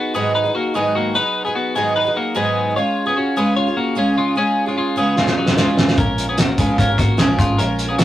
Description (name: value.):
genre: jangly indie pop.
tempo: 150 BPM.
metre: 4/4.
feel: straight.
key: G# dorian.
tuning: A4 = 441 Hz.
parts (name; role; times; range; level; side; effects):
picked twelve-string acoustic guitar; accompaniment; 0.0-8.0 s; G#2 to A#4; -20 LUFS; right 2 dB; none.
twelve-string electric guitar; arpeggios; 0.0-8.0 s; F#3 to C#5; -20 LUFS; left 2 dB; none.
cloth-damped thuddy drum kit; drums; 5.2-8.0 s; hi-hat, kick drum, snare drum; -17 LUFS; equal; none.
vintage muted picked electric bass; bass; 6.0-8.0 s; G#1 to A#1; -22 LUFS; equal; none.
room: wet booth ambience, RT60 0.2 s.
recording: rough rehearsal-room recording.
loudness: -15 LUFS.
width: side -13 dB against mid.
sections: 0.0-8.0 A section.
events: drum fill 5.2-6.0.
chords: 0.0 G#m7; 2.8 C#; 6.0 A#m7.